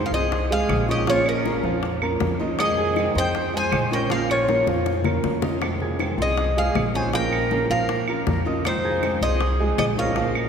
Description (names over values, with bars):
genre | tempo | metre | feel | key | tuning
latin, Cuban son and guajira | 158 BPM | 4/4 | straight | F minor | A4 = 439 Hz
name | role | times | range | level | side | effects
Cuban tres | melody | 0.0-10.5 s | Bb4 to Ab5 | -25 LUFS | left 1 dB | none
bright silver concert flute | second line | 0.0-10.5 s | Db4 to C5 | -30 LUFS | right 2 dB | none
picked old ladder-braced acoustic guitar | accompaniment | 0.0-10.5 s | C3 to F4 | -29 LUFS | left 1 dB | none
warm grand piano | arpeggios | 0.0-10.5 s | F3 to Ab6 | -28 LUFS | right 3 dB | none
upright bass | bass | 0.0-10.5 s | Bb1 to Bb2 | -26 LUFS | equal | none
bongos | percussion | 0.1-10.5 s | none | -29 LUFS | left 4 dB | none
claves | percussion | 0.7-10.5 s | none | -35 LUFS | right 5 dB | none
room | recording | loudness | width
wet cathedral reverb, RT60 4.9 s | recorded in a church or concert hall | -20 LUFS | side -7 dB against mid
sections
0.0-10.5 A section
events
drum fill 4.5-5.6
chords
0.0 Fm7; 1.1 Bbm; 2.6 Fm7; 4.1 Bbm; 5.6 Fm7; 7.1 Bbm; 8.7 Fm7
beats
0.32 0.70 | 1.07 1.45 1.83 2.21 | 2.59 2.97 3.35 3.73 | 4.11 4.49 4.86 5.24 | 5.62 6.00 6.38 6.76 | 7.14 7.52 7.89 8.27 | 8.65 9.03 9.41 9.79 | 10.16